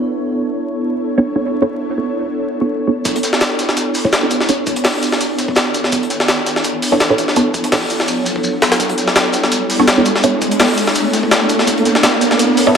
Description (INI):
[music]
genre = drum and bass, jungle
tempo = 167 BPM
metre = 4/4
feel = swing 54% on 16ths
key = B minor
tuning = A4 = 443 Hz
[part]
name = ethereal airy pad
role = sustained chords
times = 0.0-12.8 s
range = B3 to C#5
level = -18 LUFS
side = right 1 dB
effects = ensemble chorus, built-in reverb, vintage 12-bit sampler grit
[part]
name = filtered dub chord stab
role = stabs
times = 1.2-12.8 s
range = B3 to C#5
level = -17 LUFS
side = right 1 dB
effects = phaser, dub echo
[part]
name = crunchy breakbeat drum kit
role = drums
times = 3.1-12.7 s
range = hi-hat, shaker, snare drum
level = -24 LUFS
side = left 2 dB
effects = high-pass filter on hats, high-pass filter on snare, high-pass filter on perc, high-pass filter on room
[part]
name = jungle sampler-style drum kit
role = drums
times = 3.1-12.7 s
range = hi-hat, kick drum, snare drum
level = -16 LUFS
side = left 1 dB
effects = high-pass filter on kick, high-pass filter on hats, high-pass filter on snare, high-pass filter on room
[part]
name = riser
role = sound effects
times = 5.2-12.8 s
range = none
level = -22 LUFS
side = equal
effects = none
[sound]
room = moderate plate reverb, RT60 1.9 s, small room ambience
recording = vinyl crackle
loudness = -13 LUFS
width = side -7 dB against mid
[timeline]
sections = 0.0-3.1 A section; 3.1-12.8 B section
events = filter sweep on ambient pad 0.0-3.1; build-up 3.1-12.8; filter sweep on synth stab 3.1-12.8; riser 5.2-12.8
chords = 0.0 Bm11